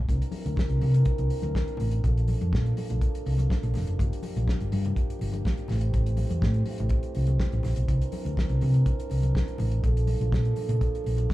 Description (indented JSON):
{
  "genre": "disco",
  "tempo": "123 BPM",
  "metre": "4/4",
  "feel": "straight",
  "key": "unclear",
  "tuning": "A4 = 439 Hz",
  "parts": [
    { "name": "hollow-body short-scale fingered electric bass", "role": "bass", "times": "0.0-11.3 s", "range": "F1 to C3", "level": "-25 LUFS", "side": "equal", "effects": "none" },
    { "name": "mellow French horn section", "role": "sustained chords", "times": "0.1-11.3 s", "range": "E3 to Bb4", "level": "-35 LUFS", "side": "right 3 dB", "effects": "none" },
    { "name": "warm soul drum kit", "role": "drums", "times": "0.1-11.3 s", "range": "hi-hat, kick drum, snare drum", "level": "-28 LUFS", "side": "equal", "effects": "none" },
    { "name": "congas", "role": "percussion", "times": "0.1-11.3 s", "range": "none", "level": "-38 LUFS", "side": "left 5 dB", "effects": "slapback echo" }
  ],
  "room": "little or no reverb",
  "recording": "live gig heard through the venue's PA, club reverb",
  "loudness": "-24 LUFS",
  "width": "side -17 dB against mid",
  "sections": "0.1-11.3 A section",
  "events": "none",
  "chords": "0.1 C9; 2.0 Bbmaj7; 4.0 Gm7; 5.7 Am7; 7.9 C9; 9.8 Bbmaj7"
}